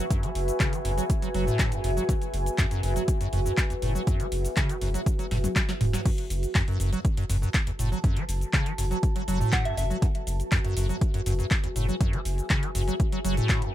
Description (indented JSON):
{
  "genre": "acid house",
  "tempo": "121 BPM",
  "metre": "4/4",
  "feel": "straight",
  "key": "F# minor",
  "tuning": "A4 = 440 Hz",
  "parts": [
    { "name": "acid bass, square", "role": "riff", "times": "0.0-13.7 s", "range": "F#1 to F#3", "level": "-30 LUFS", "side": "equal", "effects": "lush chorus, ping-pong delay" },
    { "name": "deep dark ambient pad", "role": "texture", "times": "0.0-13.7 s", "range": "F#4 to A5", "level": "-33 LUFS", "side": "equal", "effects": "chorus, built-in reverb, sidechain pumping" },
    { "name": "booming analog drum machine", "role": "drums", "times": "0.1-13.7 s", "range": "crash cymbal, handclaps, hi-hat, shaker, snare drum, toms", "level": "-31 LUFS", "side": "equal", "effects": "none" },
    { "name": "electronic kick drum", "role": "drums", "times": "0.1-13.6 s", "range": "none", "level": "-25 LUFS", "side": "equal", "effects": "overdrive" },
    { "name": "round analog bass", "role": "bass", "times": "0.4-13.4 s", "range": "E1 to F#1", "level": "-28 LUFS", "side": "equal", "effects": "sidechain pumping" },
    { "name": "soft synth bell", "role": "melody", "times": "9.5-9.9 s", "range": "E5 to F#5", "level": "-34 LUFS", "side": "equal", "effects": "chorus, tape echo" }
  ],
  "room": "light reverb",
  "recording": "none",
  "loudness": "-24 LUFS",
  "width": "side -13 dB against mid",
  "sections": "0.0-6.1 A section; 6.1-13.7 B section",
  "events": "drum fill 5.3-6.1; drop 6.1-13.7",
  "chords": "0.0 N.C.; 6.1 F#m",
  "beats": "| 0.10 0.60 1.10 1.59 | 2.09 2.58 3.08 3.58 | 4.07 4.57 5.06 5.56 | 6.06 6.55 7.05 7.54 | 8.04 8.54 9.03 9.53 | 10.02 10.52 11.01 11.51 | 12.01 12.50 13.00 13.49"
}